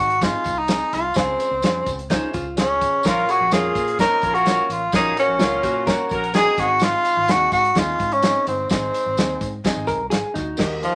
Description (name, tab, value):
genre	uptempo 1960s-style soul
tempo	127 BPM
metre	4/4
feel	straight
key	unclear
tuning	A4 = 440 Hz
part	breathy tenor saxophone	melody	0.0-10.9 s	F3 to Bb4	-21 LUFS	equal	none
part	clear grand piano	accompaniment	0.0-10.9 s	Ab2 to F5	-31 LUFS	equal	none
part	vintage muted fingered electric bass	bass	0.0-10.9 s	G1 to Bb2	-35 LUFS	equal	none
part	warm soul drum kit	drums	0.1-10.9 s	crash cymbal, hi-hat, kick drum, snare drum	-26 LUFS	equal	none
part	tambourine	percussion	0.2-10.9 s	none	-40 LUFS	equal	none
part	hollow-body jazz guitar	riff	2.1-6.5, 9.9-10.8 s	Eb4 to Bb4	-29 LUFS	equal	none
part	warm horn section	second line	3.0-6.7 s	Ab3 to Bb4	-29 LUFS	equal	none
room	moderate studio reverb, RT60 0.5 s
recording	lossy compression artefacts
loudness	-20 LUFS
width	mono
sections	0.0-10.6 A section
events	none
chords	0.0 Ab; 1.2 Db; 3.0 Bbm; 4.9 Gb/Bb; 6.6 Ab